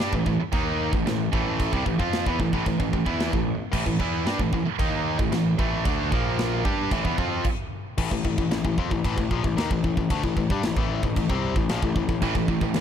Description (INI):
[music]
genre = heavy metal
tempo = 113 BPM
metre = 4/4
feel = straight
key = A minor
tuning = A4 = 440 Hz
[part]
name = high-gain distorted guitar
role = riff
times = 0.0-7.4, 12.2-12.8 s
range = A2 to G4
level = -28 LUFS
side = right 14 dB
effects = distortion
[part]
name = tight distorted guitar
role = riff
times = 0.0-12.8 s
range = A2 to G4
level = -27 LUFS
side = left 8 dB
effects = distortion
[part]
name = fuzz picked electric bass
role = bass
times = 0.0-12.8 s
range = A1 to G2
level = -29 LUFS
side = right 1 dB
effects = overdrive
[part]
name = tight metal drum kit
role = drums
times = 0.0-12.8 s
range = china cymbal, crash cymbal, kick drum, snare drum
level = -27 LUFS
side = right 1 dB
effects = none
[sound]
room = studio reverb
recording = dark, warm production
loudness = -22 LUFS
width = side -8 dB against mid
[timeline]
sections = 0.0-8.0 A section; 8.0-12.8 B section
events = stop 7.5-8.0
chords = 0.0 Am; 6.1 Bb5; 6.7 Am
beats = 0.53 1.06 | 1.59 2.12 2.66 3.19 | 3.72 4.26 4.79 5.32 | 5.86 6.39 6.92 7.45 | 7.98 8.51 9.04 9.57 | 10.11 10.63 11.16 11.69 | 12.22 12.75